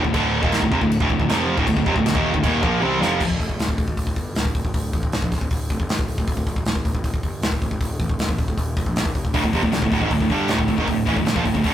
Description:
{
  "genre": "heavy metal",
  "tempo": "156 BPM",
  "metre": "4/4",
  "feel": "straight",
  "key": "D phrygian",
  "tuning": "A4 = 440 Hz",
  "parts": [
    { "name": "distorted electric guitar", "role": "riff", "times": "0.0-3.2, 9.3-11.7 s", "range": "D2 to C4", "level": "-21 LUFS", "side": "right 4 dB", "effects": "overdrive" },
    { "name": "scooped high-gain guitar", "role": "riff", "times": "0.0-3.2, 9.3-11.7 s", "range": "D2 to C4", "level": "-23 LUFS", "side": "left 5 dB", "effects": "distortion" },
    { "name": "fuzz picked electric bass", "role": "bass", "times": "0.0-11.7 s", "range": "D1 to C2", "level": "-26 LUFS", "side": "equal", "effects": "overdrive" },
    { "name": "modern studio drum kit", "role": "drums", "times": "0.0-11.7 s", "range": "crash cymbal, hi-hat, kick drum, snare drum, toms", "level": "-23 LUFS", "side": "equal", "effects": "none" }
  ],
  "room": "moderate studio reverb, RT60 0.6 s",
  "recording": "rough rehearsal-room recording, tube saturation",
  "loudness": "-19 LUFS",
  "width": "side -11 dB against mid",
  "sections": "0.0-3.2 A section; 3.2-11.7 B section",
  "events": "drum fill 2.8-3.2",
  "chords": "0.0 Dm; 3.2 D5",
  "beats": "| 0.14 0.52 0.91 1.29 | 1.67 2.06 2.44 2.82 | 3.21 3.59 3.97 4.36 | 4.74 5.12 5.51 5.89 | 6.28 6.66 7.04 7.43 | 7.81 8.20 8.58 8.96 | 9.35 9.73 10.11 10.50 | 10.88 11.27 11.65"
}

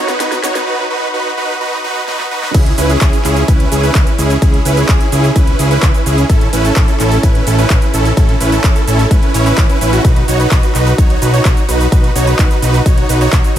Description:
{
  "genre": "EDM, festival progressive house",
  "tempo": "128 BPM",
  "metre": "4/4",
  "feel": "straight",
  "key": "C# minor",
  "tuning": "A4 = 440 Hz",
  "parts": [
    { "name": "supersaw chords", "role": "riff", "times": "0.0-13.6 s", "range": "C#4 to C#5", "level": "-15 LUFS", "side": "right 1 dB", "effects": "sidechain pumping, digital delay" },
    { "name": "big-room dance drum kit", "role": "drums", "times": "0.1-13.6 s", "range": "cabasa, crash cymbal, handclaps, hi-hat, snare drum", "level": "-21 LUFS", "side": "right 1 dB", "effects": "overdrive, small room ambience" },
    { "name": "fat analog bass", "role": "bass", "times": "2.5-13.6 s", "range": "A1 to A2", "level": "-15 LUFS", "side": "equal", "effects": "sidechain pumping" },
    { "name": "electronic kick drum", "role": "drums", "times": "2.5-13.4 s", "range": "none", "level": "-11 LUFS", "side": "equal", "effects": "overdrive, small room ambience" }
  ],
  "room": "little or no reverb",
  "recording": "high-pass filter",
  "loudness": "-10 LUFS",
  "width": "side -11 dB against mid",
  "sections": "0.0-2.5 A section; 2.5-13.6 B section",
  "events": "build-up 0.0-2.5; drum fill 0.0-0.7, 2.1-2.5; break 0.7-2.5; drop 2.5-13.6",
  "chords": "0.0 B/D#; 2.5 C#m; 6.3 A; 10.0 B",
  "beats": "0.20 | 0.67 1.14 1.61 2.08 | 2.55 3.02 3.48 3.95 | 4.42 4.89 5.36 5.83 | 6.30 6.76 7.23 7.70 | 8.17 8.64 9.11 9.58 | 10.05 10.52 10.98 11.45 | 11.92 12.39 12.86 13.33"
}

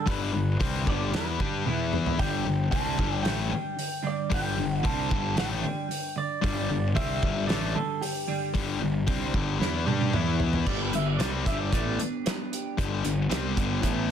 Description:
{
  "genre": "quiet-loud alternative rock",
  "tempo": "113 BPM",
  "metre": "4/4",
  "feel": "straight",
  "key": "G major",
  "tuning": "A4 = 440 Hz",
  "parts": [
    { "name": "electric guitar through a small old amp", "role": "melody", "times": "0.0-12.0 s", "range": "G4 to A5", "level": "-34 LUFS", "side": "right 2 dB", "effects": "slapback echo" },
    { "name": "twelve-string electric guitar", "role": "arpeggios", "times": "0.0-14.1 s", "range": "G2 to G4", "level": "-34 LUFS", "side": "right 7 dB", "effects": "lush chorus, slapback echo" },
    { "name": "high-gain distorted guitar", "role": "riff", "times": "0.1-14.1 s", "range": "G2 to G4", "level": "-29 LUFS", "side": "left 6 dB", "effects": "distortion" },
    { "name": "fuzz picked electric bass", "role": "bass", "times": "0.1-14.1 s", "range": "G1 to G2", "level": "-31 LUFS", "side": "right 1 dB", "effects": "overdrive" },
    { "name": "loose indie drum kit", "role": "drums", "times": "0.1-14.0 s", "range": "crash cymbal, hi-hat, kick drum, snare drum, toms", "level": "-30 LUFS", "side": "right 1 dB", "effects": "none" }
  ],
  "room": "light reverb",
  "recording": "dense, heavily limited modern master",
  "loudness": "-25 LUFS",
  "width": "side -8 dB against mid",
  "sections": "0.0-10.7 A section; 10.7-14.1 B section",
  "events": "half time 0.0-10.7; drum fill 1.7-2.2, 9.6-10.7; clean electric guitar solo 10.7-14.1",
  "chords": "0.0 G; 1.7 E5; 2.2 G5; 10.1 E5; 10.7 G",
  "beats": "| 0.07 0.61 1.14 1.67 | 2.20 2.73 3.26 3.79 | 4.32 4.85 5.38 5.91 | 6.44 6.97 7.50 8.03 | 8.56 9.09 9.61 10.14 | 10.67 11.20 11.73 12.26 | 12.78 13.31 13.84"
}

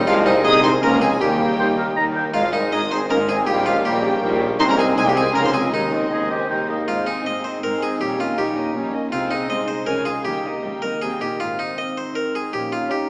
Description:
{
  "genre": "cinematic",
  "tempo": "159 BPM",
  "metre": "3/4",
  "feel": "straight",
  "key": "Ab major",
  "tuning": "A4 = 440 Hz",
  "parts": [
    { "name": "dark studio violin section", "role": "melody", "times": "0.0-13.1 s", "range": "C5 to Eb6", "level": "-27 LUFS", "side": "equal", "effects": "none" },
    { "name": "harpsichord", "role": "melody", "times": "0.0-13.1 s", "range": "Eb4 to Eb5", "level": "-23 LUFS", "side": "equal", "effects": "none" },
    { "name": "dark studio violin section", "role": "second line", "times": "0.0-13.1 s", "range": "Bb3 to Ab4", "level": "-28 LUFS", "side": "equal", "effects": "none" },
    { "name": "warm clarinet", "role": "second line", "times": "0.0-13.1 s", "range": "G3 to Ab4", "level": "-25 LUFS", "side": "equal", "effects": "none" },
    { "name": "rich studio viola section", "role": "accompaniment", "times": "0.0-13.1 s", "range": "Db3 to C4", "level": "-29 LUFS", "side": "equal", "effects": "none" },
    { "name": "warm French horn section", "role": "sustained chords", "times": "0.0-13.1 s", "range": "Eb3 to F4", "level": "-28 LUFS", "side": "equal", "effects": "none" },
    { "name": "concert harp", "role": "arpeggios", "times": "0.0-13.1 s", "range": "Ab2 to Eb6", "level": "-31 LUFS", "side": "equal", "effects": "none" },
    { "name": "clear tuba", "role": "bass", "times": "0.0-6.8 s", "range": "Ab1 to Eb2", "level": "-24 LUFS", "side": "equal", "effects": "none" },
    { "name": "warm studio cello section", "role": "bass", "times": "0.0-12.8 s", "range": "C2 to Db3", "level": "-31 LUFS", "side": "equal", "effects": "none" },
    { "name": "warm studio double bass section", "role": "bass", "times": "0.0-12.8 s", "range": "Ab1 to Eb2", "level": "-35 LUFS", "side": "equal", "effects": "none" },
    { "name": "bright small flute group", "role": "second line", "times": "0.1-6.7 s", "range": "Eb5 to Eb6", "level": "-27 LUFS", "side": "equal", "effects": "none" },
    { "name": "warm oboe", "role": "second line", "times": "1.6-2.2, 6.1-6.9 s", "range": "G4 to Bb5", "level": "-24 LUFS", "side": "equal", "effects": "none" }
  ],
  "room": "wet scoring stage reverb, RT60 1.6 s",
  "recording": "small speaker sound",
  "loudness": "-17 LUFS",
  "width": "side -40 dB against mid",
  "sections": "0.0-6.9 A section; 6.9-13.1 B section",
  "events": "none",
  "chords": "0.1 Ab/C; 0.8 Db; 1.2 Eb; 2.3 Ab; 3.5 Eb7/Bb; 4.6 Ab/C; 5.3 Dbmaj7; 5.7 Ab/Eb; 6.5 Eb; 6.9 Ab; 8.0 Eb7/Bb; 9.1 Ab/C; 9.9 Db; 10.3 Eb; 11.4 Ab; 12.5 Eb7/Bb",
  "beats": "| 0.07 0.45 0.82 | 1.20 1.58 1.96 | 2.34 2.72 3.10 | 3.47 3.85 4.22 | 4.59 4.97 5.35 | 5.73 6.11 6.49 | 6.87 7.25 7.63 | 8.00 8.38 8.75 | 9.12 9.50 9.88 | 10.26 10.64 11.02 | 11.40 11.78 12.15 | 12.53 12.90"
}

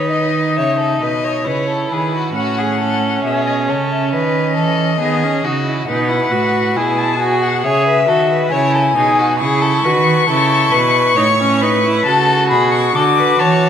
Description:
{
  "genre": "classical, baroque-style fugue for string quartet",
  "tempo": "68 BPM",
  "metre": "4/4",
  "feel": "straight",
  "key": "unclear",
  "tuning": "A4 = 439 Hz",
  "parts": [
    { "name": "warm violin", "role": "melody", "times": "0.0-13.7 s", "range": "B4 to D6", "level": "-17 LUFS", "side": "left 5 dB", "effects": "none" },
    { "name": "rich violin", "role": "second line", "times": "0.0-13.7 s", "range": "F#4 to C#5", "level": "-19 LUFS", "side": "left 1 dB", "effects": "none" },
    { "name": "rich viola", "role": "accompaniment", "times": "0.0-13.7 s", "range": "B3 to G#4", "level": "-19 LUFS", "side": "right 2 dB", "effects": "none" },
    { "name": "rich cello", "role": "bass", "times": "0.0-13.7 s", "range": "A2 to E3", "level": "-20 LUFS", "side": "right 5 dB", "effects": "none" }
  ],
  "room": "moderate concert hall reverb, RT60 2.3 s",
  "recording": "none",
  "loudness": "-13 LUFS",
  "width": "side -8 dB against mid",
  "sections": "0.0-13.7 A section",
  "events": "none",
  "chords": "0.0 G#m (rootless); 0.6 C#m; 2.4 F#m/A; 4.1 B/D#; 5.9 G#m7; 7.6 F#m7/C#; 11.2 B7/A; 13.0 Bm7",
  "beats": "0.57 1.46 | 2.35 3.24 4.13 5.01 | 5.89 6.77 7.65 8.53 | 9.41 10.29 11.18 12.07 | 12.96"
}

